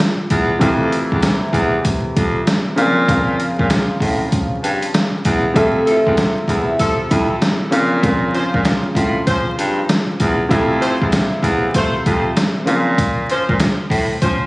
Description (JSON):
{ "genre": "hip hop, boom-bap hip-hop", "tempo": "97 BPM", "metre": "4/4", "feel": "swing 59% on 16ths", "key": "F major", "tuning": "A4 = 440 Hz", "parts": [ { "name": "nylon-string guitar", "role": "melody", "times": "0.0-0.6, 5.6-10.5 s", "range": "E4 to A4", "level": "-22 LUFS", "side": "equal", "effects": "high-pass filter, low-pass filter, tape echo" }, { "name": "trip hop sampler-style drum kit", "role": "drums", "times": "0.0-14.4 s", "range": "hi-hat, kick drum, snare drum", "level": "-18 LUFS", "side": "equal", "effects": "none" }, { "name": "clear baritone saxophone", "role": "bass", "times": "0.3-14.1 s", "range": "E2 to Bb2", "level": "-18 LUFS", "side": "equal", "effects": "none" }, { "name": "warm upright piano", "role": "accompaniment", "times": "0.6-12.9 s", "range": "C3 to E5", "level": "-20 LUFS", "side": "equal", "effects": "cassette tape, high-pass filter, low-pass filter" }, { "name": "warm horn section", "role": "stabs", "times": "5.9-14.4 s", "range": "F3 to C5", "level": "-23 LUFS", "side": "equal", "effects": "high-pass filter, low-pass filter, tape echo" } ], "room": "light reverb, studio reverb", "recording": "recorded on a phone in the room, vinyl crackle", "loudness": "-14 LUFS", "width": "side -22 dB against mid", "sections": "0.0-14.5 A section", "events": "break 0.0-0.6", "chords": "0.0 N.C.; 0.6 Fmaj7; 2.8 Bbmadd9; 5.6 Fmaj7; 7.7 Bbmadd9; 10.5 Fmaj7; 12.7 Bbmadd9" }